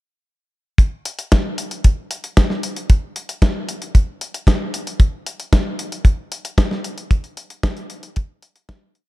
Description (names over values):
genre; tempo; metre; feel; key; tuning
italo disco; 114 BPM; 4/4; straight; none; none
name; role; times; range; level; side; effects
dusty soul sampler-style drum kit; drums; 0.8-9.1 s; hi-hat, snare drum; -22 LUFS; equal; small room ambience
kick drum; drums; 0.8-8.8 s; none; -13 LUFS; equal; small room ambience
room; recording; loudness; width
studio reverb; dark, warm production; -17 LUFS; side -18 dB against mid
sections
0.8-9.1 verse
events
fade-out 6.4-9.1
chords
none